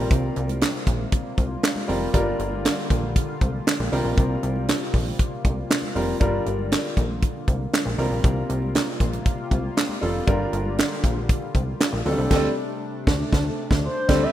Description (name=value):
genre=early-eighties boogie funk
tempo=118 BPM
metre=4/4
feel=straight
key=G minor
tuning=A4 = 440 Hz
part: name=clear concert grand piano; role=accompaniment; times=0.0-14.3 s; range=F#3 to Bb4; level=-26 LUFS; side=equal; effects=none
part: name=chorused pulse-width pad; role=sustained chords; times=0.0-14.3 s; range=C3 to F4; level=-31 LUFS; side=left 1 dB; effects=none
part: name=plucky analog bass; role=bass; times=0.0-14.3 s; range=F1 to D2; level=-26 LUFS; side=equal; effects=none
part: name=tight funk drum kit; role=drums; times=0.1-14.3 s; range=crash cymbal, handclaps, hi-hat, kick drum, snare drum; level=-23 LUFS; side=equal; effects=none
part: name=congas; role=percussion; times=0.1-12.2 s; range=none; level=-38 LUFS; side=right 1 dB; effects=none
part: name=expressive portamento lead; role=melody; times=13.9-14.3 s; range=C5 to E5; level=-23 LUFS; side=left 1 dB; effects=chorus
room=light reverb, small room ambience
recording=rough home demo mix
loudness=-21 LUFS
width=side -12 dB against mid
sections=0.0-14.3 A section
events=band accent 12.3-14.3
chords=0.0 C7sus4; 2.1 Gm7; 3.9 C7sus4; 6.2 Gm7; 8.0 C7sus4; 10.3 Gm7; 12.1 D7sus4